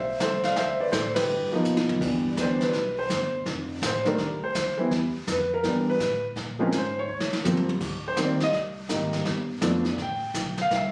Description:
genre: jazz piano trio.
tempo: 166 BPM.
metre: 4/4.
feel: swing 64% on 8ths.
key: unclear.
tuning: A4 = 440 Hz.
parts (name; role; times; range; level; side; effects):
warm upright piano; melody; 0.0-10.9 s; Eb3 to G5; -28 LUFS; equal; none.
upright bass; bass; 0.0-10.9 s; F1 to B2; -36 LUFS; equal; none.
jazz brush drum kit; drums; 0.2-10.9 s; brushed snare drum, crash cymbal, hi-hat, kick drum, ride cymbal, snare drum, toms; -33 LUFS; equal; none.
room: moderate small room reverb, RT60 0.5 s.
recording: recorded on a phone in the room, studio reverb, compression.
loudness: -26 LUFS.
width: mono.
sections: 0.0-2.0 A section; 2.0-10.9 B section.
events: band accent 1.1; drum fill 1.7-2.0, 7.1-7.8; upright piano solo 2.0-10.9.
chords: 0.0 Fmaj7; 0.6 D5; 1.3 G7alt; 2.0 Cmaj9; 3.5 F6; 4.9 Em; 6.4 Bbm7; 7.1 Eb7; 7.8 Abmaj9; 9.3 G7.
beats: 0.21 | 0.57 0.93 1.29 1.66 | 2.02 2.38 2.74 3.10 | 3.47 3.83 4.19 4.55 | 4.92 5.28 5.64 6.00 | 6.37 6.73 7.09 7.45 | 7.82 8.18 8.54 8.90 | 9.26 9.63 9.99 10.35 | 10.71.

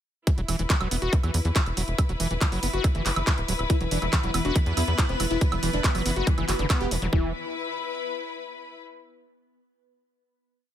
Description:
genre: psychedelic trance.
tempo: 140 BPM.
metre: 4/4.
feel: straight.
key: unclear.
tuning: A4 = 441 Hz.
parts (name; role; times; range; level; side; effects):
screaming distorted acid line; riff; 0.3-7.3 s; D3 to F#4; -32 LUFS; right 1 dB; distortion, chorus, auto-pan, sidechain pumping, dub echo.
electronic kick drum; drums; 0.3-7.2 s; none; -23 LUFS; equal; studio reverb.
techno drum kit; drums; 0.3-7.1 s; handclaps, hi-hat, woodblock; -29 LUFS; right 2 dB; overdrive, studio reverb.
rich studio string section; texture; 0.3-8.8 s; E4 to B5; -33 LUFS; left 4 dB; sidechain pumping.
tight sequencer bass; bass; 0.4-7.3 s; D1 to E2; -28 LUFS; equal; none.
wide unison lead; melody; 3.7-7.3 s; E3 to G4; -31 LUFS; left 2 dB; phaser, sidechain pumping, ping-pong delay.
evolving wavetable pad; sustained chords; 4.2-7.1 s; B3 to B4; -36 LUFS; right 2 dB; ensemble chorus, built-in reverb, phaser, sidechain pumping.
room: little or no reverb.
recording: none.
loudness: -22 LUFS.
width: side -11 dB against mid.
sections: 0.3-7.1 drop; 7.1-8.8 final chord.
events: drop 0.3-7.1.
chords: 0.3 E5.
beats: | 0.27 0.70 1.13 1.56 | 1.99 2.41 2.84 3.27 | 3.70 4.13 4.56 4.99 | 5.41 5.84 6.27 6.70 | 7.13 7.56 7.99 8.41.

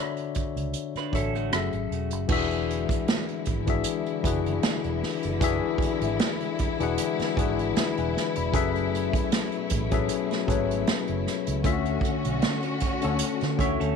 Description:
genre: R&B, neo-soul.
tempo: 77 BPM.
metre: 4/4.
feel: swing 53% on 16ths.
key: unclear.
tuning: A4 = 440 Hz.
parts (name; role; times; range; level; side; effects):
tine electric piano; accompaniment; 0.0-14.0 s; D3 to B5; -28 LUFS; left 11 dB; medium stereo tremolo.
unplugged drum kit; drums; 0.2-14.0 s; crash cymbal, hi-hat, kick drum, rim click, snare drum; -28 LUFS; right 3 dB; none.
vintage muted fingered electric bass; bass; 0.4-14.0 s; E1 to D3; -31 LUFS; right 3 dB; none.
electric guitar through a small old amp; second line; 1.0-1.7, 13.6-14.0 s; A3 to C#5; -34 LUFS; right 17 dB; spring reverb, tape echo.
warm studio string section; sustained chords; 2.3-14.0 s; B2 to F#4; -33 LUFS; equal; none.
room: light reverb, studio ambience.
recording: 1960s-style stereo with parts hard left and right.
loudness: -24 LUFS.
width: side -6 dB against mid.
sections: 0.0-2.3 A section; 2.3-14.0 B section.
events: none.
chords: 0.0 Dmaj7; 1.5 F#m9; 2.3 E7; 8.5 F#m11; 11.6 Dmaj7.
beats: 0.74 1.52 | 2.30 3.08 3.86 4.64 | 5.42 6.19 6.97 7.75 | 8.53 9.31 10.09 10.87 | 11.65 12.43 13.21.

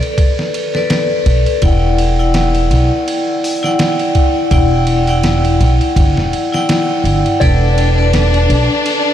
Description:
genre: trip hop.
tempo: 83 BPM.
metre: 4/4.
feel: swing 56% on 16ths.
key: E minor.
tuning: A4 = 439 Hz.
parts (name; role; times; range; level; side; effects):
vibraphone with hard mallets; accompaniment; 0.0-9.1 s; E4 to G5; -15 LUFS; left 1 dB; harmonic tremolo, tape echo.
trip hop sampler-style drum kit; drums; 0.0-9.0 s; hi-hat, kick drum, ride cymbal, snare drum; -17 LUFS; equal; studio reverb.
upright bass; bass; 1.3-8.7 s; E1 to B1; -13 LUFS; equal; tube saturation.
clear studio string section; sustained chords; 7.4-9.1 s; D4; -17 LUFS; left 3 dB; none.
small celesta; arpeggios; 7.4-9.1 s; D5; -26 LUFS; left 1 dB; none.
room: moderate huge ambient reverb, RT60 6.9 s.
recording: dreamy mix soaked in reverb.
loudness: -11 LUFS.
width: side -10 dB against mid.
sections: 0.0-9.1 A section.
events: none.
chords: 0.0 Bm7; 1.6 Em9; 7.4 Bm7/E.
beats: 0.18 0.90 | 1.62 2.35 3.07 3.79 | 4.51 5.24 5.96 6.68 | 7.41 8.13 8.85.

